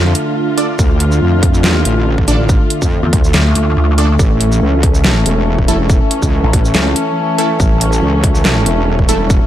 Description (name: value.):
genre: heavy wobble dubstep.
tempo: 141 BPM.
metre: 4/4.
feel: swing 54% on 16ths, half-time.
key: D harmonic minor.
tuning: A4 = 442 Hz.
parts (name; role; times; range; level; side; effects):
dark studio string section; sustained chords; 0.0-9.5 s; D3 to F4; -19 LUFS; left 2 dB; sidechain pumping.
wobble bass; bass; 0.0-9.4 s; E1 to F2; -14 LUFS; equal; chorus, overdrive.
warbly tape-like pad; texture; 0.0-9.5 s; D4 to A5; -21 LUFS; right 1 dB; chorus, built-in reverb, sidechain pumping.
dubstep drum kit; drums; 0.1-9.4 s; handclaps, hi-hat, shaker, snare drum; -17 LUFS; equal; overdrive.
supersaw stab; stabs; 0.6-9.2 s; A3 to D5; -21 LUFS; right 2 dB; ping-pong delay.
electronic kick drum; drums; 0.8-9.4 s; none; -13 LUFS; equal; none.
pulsing pluck wobble bass; bass; 3.0-6.5 s; Bb1 to E2; -12 LUFS; equal; chorus, overdrive.
room: light reverb, digital ambience.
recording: dark, warm production.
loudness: -10 LUFS.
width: side -12 dB against mid.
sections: 0.0-9.5 A section.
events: none.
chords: 0.0 Dm; 4.2 A.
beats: 0.36 | 0.79 1.21 1.64 2.06 | 2.49 2.92 3.34 3.77 | 4.19 4.62 5.04 5.47 | 5.89 6.32 6.75 7.17 | 7.60 8.02 8.45 8.87 | 9.30.